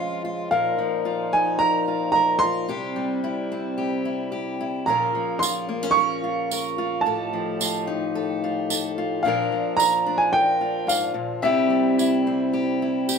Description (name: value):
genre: acoustic folk duo or small band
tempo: 110 BPM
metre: 4/4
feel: straight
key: unclear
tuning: A4 = 440 Hz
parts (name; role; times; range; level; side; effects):
- warm upright piano; melody; 0.0-12.5 s; E5 to Db6; -22 LUFS; right 2 dB; none
- fingerpicked steel-string acoustic guitar; accompaniment; 0.0-13.2 s; Ab2 to Bb4; -25 LUFS; left 2 dB; none
- pedal harmonium; sustained chords; 0.0-13.2 s; A2 to G4; -31 LUFS; left 1 dB; none
- tambourine; percussion; 5.4-13.2 s; none; -26 LUFS; right 6 dB; none
room: wet small room reverb, RT60 0.6 s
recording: minimal, uncompressed stereo recording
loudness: -21 LUFS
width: side -6 dB against mid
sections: 0.0-13.2 A section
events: none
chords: 0.0 Db; 0.5 Bbsus4; 2.7 C; 4.9 Bbmadd9; 7.1 F7/A; 9.2 Bb; 11.4 C